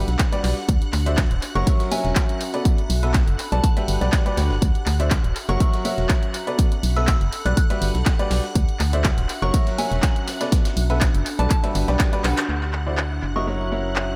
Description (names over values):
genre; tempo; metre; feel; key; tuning
piano house; 122 BPM; 4/4; swing 53% on 16ths; D major; A4 = 437 Hz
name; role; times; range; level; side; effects
string machine, violins; sustained chords; 0.0-14.2 s; F#5 to F#6; -40 LUFS; equal; ensemble chorus, sidechain pumping
bright baby grand piano; riff; 0.0-14.2 s; D3 to F#5; -30 LUFS; equal; sidechain pumping, low-pass filter, analog delay
organ-like FM bass; bass; 0.0-14.2 s; D1 to D2; -25 LUFS; equal; sidechain pumping
warbly tape-like pad; texture; 0.0-14.2 s; C#4 to B5; -35 LUFS; equal; chorus, built-in reverb, sidechain pumping
breakbeat sampler-style drum kit; drums; 0.1-12.5 s; hi-hat, snare drum, tambourine; -39 LUFS; equal; none
punchy analog drum machine; drums; 0.1-14.1 s; handclaps, hi-hat; -31 LUFS; equal; analog delay
electronic kick drum; drums; 0.2-12.1 s; none; -22 LUFS; equal; none
soft synth bell; melody; 1.6-13.5 s; G#5 to F#6; -33 LUFS; equal; chorus, analog delay
room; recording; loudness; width
light reverb, digital ambience; echo-heavy mix; -21 LUFS; mono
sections
0.0-12.5 A section; 12.5-14.2 B section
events
drum fill 12.2; band accent 12.4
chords
0.0 Gmaj7; 0.7 D9; 1.4 F#7; 2.4 Bm7; 3.6 Gmaj7; 4.6 D9; 5.4 F#7; 6.3 Bm7; 7.6 Gmaj7; 8.6 D9; 9.3 F#7; 10.3 Bm7; 11.5 Gmaj7; 12.5 D9; 13.2 F#7